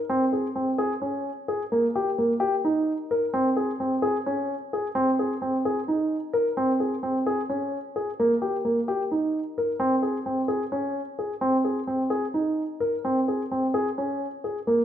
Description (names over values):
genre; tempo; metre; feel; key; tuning
contemporary instrumental, contemporary; 259 BPM (eighths); 7/8; straight; unclear; A4 = 441 Hz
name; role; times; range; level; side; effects
dark concert grand piano; solo; 0.1-14.8 s; Bb3 to Bb4; -23 LUFS; equal; none
room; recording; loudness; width
wet recital hall reverb, RT60 1.5 s; minimal, uncompressed stereo recording; -23 LUFS; side -10 dB against mid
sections
0.0-8.2 A section; 8.2-14.8 A section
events
none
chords
none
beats
| 0.10 0.33 0.56 0.79 1.02 1.26 1.49 | 1.72 1.95 2.18 2.41 2.64 2.88 3.11 | 3.34 3.57 3.80 4.03 4.26 4.49 4.73 | 4.96 5.19 5.42 5.65 5.88 6.11 6.34 | 6.58 6.81 7.04 7.27 7.50 7.73 7.96 | 8.19 8.43 8.66 8.89 9.12 9.35 9.58 | 9.81 10.04 10.28 10.51 10.74 10.97 11.20 | 11.43 11.66 11.90 12.13 12.36 12.59 12.82 | 13.05 13.29 13.52 13.75 13.98 14.21 14.44 | 14.68